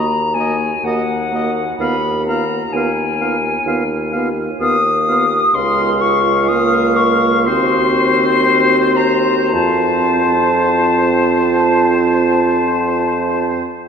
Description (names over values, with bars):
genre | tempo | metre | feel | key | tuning
classical, slow romantic movement for wind quintet | 51-65 BPM | 4/4 | rubato | unclear | A4 = 437 Hz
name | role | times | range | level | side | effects
silver concert flute | melody | 0.0-13.5 s | Gb5 to Eb6 | -17 LUFS | left 3 dB | none
clear oboe | second line | 0.0-13.7 s | C5 to F5 | -22 LUFS | left 1 dB | none
clear French horn | accompaniment | 0.0-13.7 s | Ab3 to C4 | -22 LUFS | equal | none
warm clarinet | accompaniment | 0.0-13.7 s | F4 to Gb4 | -22 LUFS | right 5 dB | none
dark bassoon | bass | 0.0-13.7 s | Db2 to F2 | -19 LUFS | right 1 dB | none
room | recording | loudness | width
wet cathedral reverb, RT60 5.1 s | recorded in a church or concert hall | -13 LUFS | side -6 dB against mid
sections
0.0-13.9 A section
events
none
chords
0.0 Ebm; 1.8 Fm7b5/Eb; 5.5 Db; 7.5 Cdim/Eb; 9.5 F